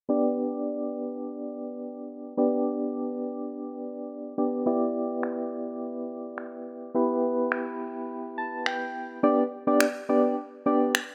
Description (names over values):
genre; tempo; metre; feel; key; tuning
dance-pop; 105 BPM; 4/4; straight; G major; A4 = 440 Hz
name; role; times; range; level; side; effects
soft electric-piano-like synth keys; accompaniment; 0.1-10.9 s; B3 to A5; -29 LUFS; equal; chorus, tremolo
electronic finger snaps; drums; 5.2-11.1 s; none; -31 LUFS; equal; none
room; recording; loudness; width
light reverb; rough home demo mix, low-pass filter; -29 LUFS; mono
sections
0.1-9.2 A section; 9.2-11.1 B section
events
filter sweep 0.1-9.2; synth keys fill 8.1-9.2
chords
0.1 G; 4.7 Em7